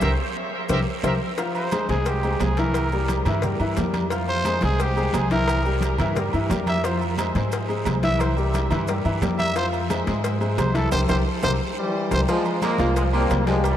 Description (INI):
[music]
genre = latin, salsa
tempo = 176 BPM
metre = 4/4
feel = straight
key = F harmonic minor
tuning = A4 = 440 Hz
[part]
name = warm trumpet section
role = melody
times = 0.0-1.1 s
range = Bb4 to E5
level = -32 LUFS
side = right 1 dB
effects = diffuse ambient delay
[part]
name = bright grand piano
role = accompaniment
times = 0.0-13.8 s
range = E3 to C6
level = -26 LUFS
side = left 2 dB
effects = none
[part]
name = upright bass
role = bass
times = 0.0-13.8 s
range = C2 to Ab2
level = -24 LUFS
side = equal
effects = none
[part]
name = congas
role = percussion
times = 0.0-13.8 s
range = none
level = -30 LUFS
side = left 1 dB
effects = none
[part]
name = cowbell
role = percussion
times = 0.0-13.8 s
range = none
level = -34 LUFS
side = left 5 dB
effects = none
[part]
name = guiro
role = percussion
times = 0.0-13.8 s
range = none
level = -42 LUFS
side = right 6 dB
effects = none
[part]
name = maracas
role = percussion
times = 0.0-13.8 s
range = none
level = -45 LUFS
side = right 6 dB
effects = none
[part]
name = timbales and agogo bells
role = percussion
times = 0.0-13.8 s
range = none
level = -32 LUFS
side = right 7 dB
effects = none
[part]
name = growling trumpet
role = melody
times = 1.6-12.2 s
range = G4 to E5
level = -28 LUFS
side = equal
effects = diffuse ambient delay
[part]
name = bright trombone section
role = melody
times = 11.8-13.8 s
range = E3 to Bb3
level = -24 LUFS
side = left 1 dB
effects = none
[part]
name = growling baritone saxophone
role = second line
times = 12.3-13.7 s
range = F3 to Ab3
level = -30 LUFS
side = right 4 dB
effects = none
[sound]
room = moderate huge ambient reverb, RT60 7.9 s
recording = dreamy mix soaked in reverb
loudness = -20 LUFS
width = side -10 dB against mid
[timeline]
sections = 0.0-1.4 A section; 1.4-12.3 B section; 12.3-13.8 C section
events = band accent 0.0-1.4, 10.9-12.3; drum fill 0.4-1.4, 11.4-12.3; trumpet solo 1.4-12.3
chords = 0.0 C7(no3); 1.4 Fm; 2.7 C7; 4.1 Fm; 5.5 C7; 6.8 Fm; 8.2 C7; 9.6 Fm; 10.9 C7; 12.3 Fm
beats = | 0.02 0.36 0.70 1.04 | 1.38 1.72 2.06 2.41 | 2.75 3.09 3.43 3.77 | 4.12 4.46 4.80 5.14 | 5.48 5.82 6.16 6.50 | 6.84 7.18 7.53 7.87 | 8.21 8.54 8.88 9.22 | 9.56 9.90 10.24 10.58 | 10.92 11.26 11.60 11.94 | 12.28 12.62 12.96 13.30 | 13.64